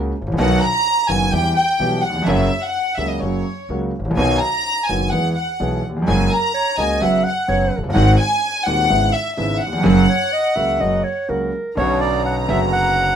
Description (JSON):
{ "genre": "tango", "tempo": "127 BPM", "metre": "4/4", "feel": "rubato", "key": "unclear", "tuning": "A4 = 440 Hz", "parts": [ { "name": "warm concert grand piano", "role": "accompaniment", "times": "0.0-13.2 s", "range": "D#1 to G#4", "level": "-19 LUFS", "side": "right 1 dB", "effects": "none" }, { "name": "upright bass", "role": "bass", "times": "0.0-13.2 s", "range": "E#1 to E2", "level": "-23 LUFS", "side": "equal", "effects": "none" }, { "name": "warm studio violin section", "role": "second line", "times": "0.4-13.2 s", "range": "C#5 to A#5", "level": "-20 LUFS", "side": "left 1 dB", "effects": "none" }, { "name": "dark clarinet", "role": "second line", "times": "6.3-11.8 s", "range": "A#4 to F#5", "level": "-21 LUFS", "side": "right 1 dB", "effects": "none" }, { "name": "bandoneon", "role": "melody", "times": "11.8-13.2 s", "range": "C#5 to F#5", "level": "-19 LUFS", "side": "right 2 dB", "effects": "none" } ], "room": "moderate studio ambience, RT60 0.5 s", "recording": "minimal, uncompressed stereo recording", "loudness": "-16 LUFS", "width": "side -8 dB against mid", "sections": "0.0-11.8 A section; 11.8-13.2 B section", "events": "violin section solo 0.0-11.8", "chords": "0.4 B; 1.3 Em; 2.3 F#; 4.2 B; 5.1 E; 6.1 F#add9; 7.0 Bsus2/F#; 8.0 G#7; 8.9 C#m7/G#; 9.8 F#; 11.8 Bmadd9" }